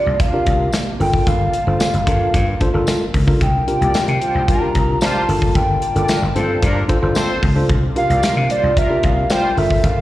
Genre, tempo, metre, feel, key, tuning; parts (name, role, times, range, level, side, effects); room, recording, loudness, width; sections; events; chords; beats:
early-eighties boogie funk; 112 BPM; 4/4; straight; A4 = 440 Hz
hollow clarinet-like synth lead; melody; 0.0-10.0 s; D5 to Bb5; -20 LUFS; right 1 dB; chorus, slapback echo
lush unison pad; sustained chords; 0.0-10.0 s; C3 to A5; -29 LUFS; equal; chorus, phaser
vintage slap bass; bass; 0.1-10.0 s; G1 to C3; -19 LUFS; equal
modern studio drum kit; drums; 0.2-10.0 s; hi-hat, kick drum, snare drum; -20 LUFS; equal
tine electric piano; accompaniment; 0.3-10.0 s; D4 to C5; -22 LUFS; left 1 dB
tambourine; percussion; 0.7-9.4 s; -33 LUFS; left 2 dB
mellow synth brass; second line; 3.8-9.5 s; F3 to D5; -24 LUFS; left 1 dB; chorus, slapback echo
light reverb, small room ambience; live gig heard through the venue's PA, recital hall reverb; -14 LUFS; side -15 dB against mid
0.0-10.0 A section
0.0 C9sus4; 1.0 Gm9; 3.4 C9sus4; 5.3 Gm9; 7.7 C9sus4
0.20 0.73 | 1.27 1.80 2.34 2.88 | 3.41 3.95 4.48 5.02 | 5.55 6.09 6.62 7.16 | 7.70 8.23 8.77 9.30 | 9.84